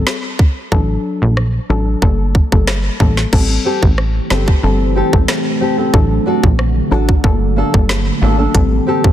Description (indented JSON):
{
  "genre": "dancehall",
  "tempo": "92 BPM",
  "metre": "4/4",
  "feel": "straight",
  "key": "A phrygian",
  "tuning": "A4 = 435 Hz",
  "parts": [
    { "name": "soft round pluck", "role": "accompaniment", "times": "0.0-9.1 s", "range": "F#3 to A4", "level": "-21 LUFS", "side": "left 4 dB", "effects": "chorus, sidechain pumping" },
    { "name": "plucky analog bass", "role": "bass", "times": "0.0-9.1 s", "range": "G1 to Bb1", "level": "-15 LUFS", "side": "equal", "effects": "none" },
    { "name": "island pop drum kit", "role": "drums", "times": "0.1-9.1 s", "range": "crash cymbal, hi-hat, kick drum, rim click, snare drum", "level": "-14 LUFS", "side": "equal", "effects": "none" },
    { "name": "deep dark ambient pad", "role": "sustained chords", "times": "4.1-9.1 s", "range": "D3 to G4", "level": "-20 LUFS", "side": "right 2 dB", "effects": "chorus, built-in reverb, sidechain pumping" },
    { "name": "nylon-string guitar", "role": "arpeggios", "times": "3.6-9.1 s", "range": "Bb3 to A4", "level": "-19 LUFS", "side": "equal", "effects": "none" }
  ],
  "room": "light reverb",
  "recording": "dense, heavily limited modern master",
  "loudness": "-12 LUFS",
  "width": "side -12 dB against mid",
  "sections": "0.0-3.3 A section; 3.3-9.1 B section",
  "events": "none",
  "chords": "0.0 N.C.; 0.7 D/A; 2.0 Gmadd9; 3.3 Am7; 5.9 D/A; 7.2 Gmadd9; 8.5 Am7",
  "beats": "0.07 | 0.72 1.37 2.02 2.68 | 3.33 3.98 4.63 5.29 | 5.94 6.59 7.24 7.89 | 8.55"
}